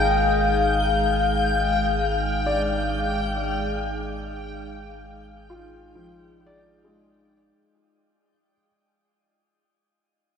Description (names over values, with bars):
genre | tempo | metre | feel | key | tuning
ambient | free time | none | none | unclear | A4 = 440 Hz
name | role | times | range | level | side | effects
warbly tape-like pad | sustained chords | 0.0-7.6 s | Ab3 to F5 | -24 LUFS | left 3 dB | chorus, built-in reverb, phaser
felt-muted upright piano | arpeggios | 0.0-8.7 s | F3 to D5 | -35 LUFS | left 1 dB | ping-pong delay
warm sub bass | bass | 0.0-7.5 s | Ab1 | -29 LUFS | equal | none
backwards swelling texture | texture | 0.0-7.6 s | G5 to G6 | -28 LUFS | right 1 dB | built-in reverb
room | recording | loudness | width
wet shimmer reverb, RT60 8.1 s | worn, warbling old tape, cassette tape, warbly pitch drift | -21 LUFS | side -7 dB against mid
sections
0.0-7.6 A section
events
fade-out 0.0-7.6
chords
0.0 Abmaj7(no3)